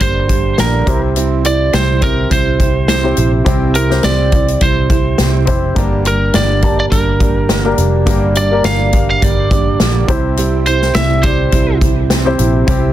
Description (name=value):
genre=piano-driven pop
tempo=104 BPM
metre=4/4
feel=swing 56% on 16ths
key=unclear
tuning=A4 = 441 Hz
part: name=lightly driven lead guitar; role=melody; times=0.0-11.8 s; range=Bb4 to F5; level=-18 LUFS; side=right 1 dB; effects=ping-pong delay
part: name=warm grand piano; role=accompaniment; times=0.0-12.9 s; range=G2 to A5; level=-20 LUFS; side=left 4 dB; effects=none
part: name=fingerpicked steel-string acoustic guitar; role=riff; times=0.0-12.9 s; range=G2 to G4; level=-19 LUFS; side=right 10 dB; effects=none
part: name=vintage muted fingered electric bass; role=bass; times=0.0-12.9 s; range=F1 to C2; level=-16 LUFS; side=equal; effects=none
part: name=natural country drum kit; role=drums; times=0.0-12.8 s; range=hi-hat, kick drum, snare drum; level=-16 LUFS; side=equal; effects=soft clipping on snare
room=little or no reverb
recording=dense, heavily limited modern master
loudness=-11 LUFS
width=side -12 dB against mid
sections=0.0-12.9 A section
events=none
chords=0.0 Gm; 0.9 C; 5.8 Gm; 10.1 C